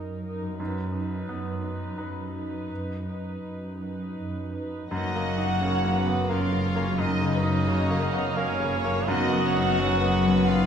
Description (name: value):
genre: cinematic, emotional film score for orchestra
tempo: 80-88 BPM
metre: 3/4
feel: rubato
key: F# major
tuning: A4 = 440 Hz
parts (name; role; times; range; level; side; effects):
- bright baby grand piano; accompaniment; 0.0-10.7 s; F#2 to C#5; -32 LUFS; equal; none
- dark studio viola section; accompaniment; 0.0-10.7 s; A#3 to E#5; -34 LUFS; right 2 dB; none
- concert harp; arpeggios; 0.0-10.7 s; F#2 to A#5; -30 LUFS; left 4 dB; none
- dark studio cello section; bass; 0.0-10.7 s; F#2; -30 LUFS; right 1 dB; none
- rich studio violin section; melody; 4.9-10.7 s; F#4 to D#5; -33 LUFS; left 2 dB; none
- warm cor anglais; melody; 4.9-10.7 s; C#4 to F#4; -30 LUFS; right 3 dB; none
- dark studio violin section; second line; 4.9-10.7 s; C#5 to F#5; -31 LUFS; left 2 dB; none
- warm symphonic double bass section; bass; 4.9-10.7 s; F#1; -32 LUFS; right 1 dB; none
room: wet recital hall reverb, RT60 1.7 s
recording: recorded in a church or concert hall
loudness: -24 LUFS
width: side -8 dB against mid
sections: 0.0-4.9 A section; 4.9-10.7 B section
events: none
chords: 0.0 F#6; 0.6 B/F#; 4.9 F#6; 9.1 B/F#